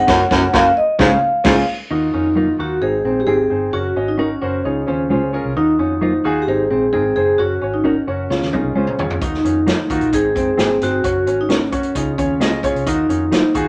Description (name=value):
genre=uptempo 1960s-style soul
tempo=132 BPM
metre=4/4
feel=straight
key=Eb dorian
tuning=A4 = 440 Hz
part: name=vibraphone with soft mallets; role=melody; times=0.0-13.7 s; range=Db4 to Gb5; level=-20 LUFS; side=equal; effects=none
part: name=warm grand piano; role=accompaniment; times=0.0-13.7 s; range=Ab2 to Eb5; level=-25 LUFS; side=equal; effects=none
part: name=breathy baritone saxophone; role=riff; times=0.0-1.6 s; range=Gb2 to Ab2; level=-20 LUFS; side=equal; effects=none
part: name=hollow-body jazz guitar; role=riff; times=0.0-13.7 s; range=C4 to Gb4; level=-28 LUFS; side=equal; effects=none
part: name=vintage muted fingered electric bass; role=bass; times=0.0-13.7 s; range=Gb1 to F2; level=-29 LUFS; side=equal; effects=none
part: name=mellow electric guitar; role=stabs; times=0.1-13.4 s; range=Gb3 to Bb4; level=-23 LUFS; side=equal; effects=vibrato effect
part: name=swinging big-band drum kit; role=drums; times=0.1-1.6, 8.3-13.7 s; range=crash cymbal, hi-hat, kick drum, snare drum, toms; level=-24 LUFS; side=equal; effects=none
room=moderate studio reverb, RT60 0.5 s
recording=none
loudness=-17 LUFS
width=mono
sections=0.0-1.9 A section; 1.9-13.7 B section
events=band accent 0.1-1.9; drum fill 8.3-9.2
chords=0.1 Gb; 1.0 Db; 1.9 Ebmadd9; 2.8 Ab; 3.7 Gb; 4.7 Db; 5.6 Ebmadd9; 6.5 Ab; 7.4 Gb; 8.3 Db; 9.2 Ebmadd9; 10.1 Ab; 11.0 Gb; 12.0 Db; 12.9 Ebmadd9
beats=| 0.09 0.54 1.00 1.45 | 1.91 2.37 2.82 3.28 | 3.74 4.19 4.65 5.11 | 5.56 6.02 6.48 6.93 | 7.39 7.85 8.30 8.76 | 9.22 9.67 10.13 10.59 | 11.04 11.50 11.95 12.41 | 12.87 13.32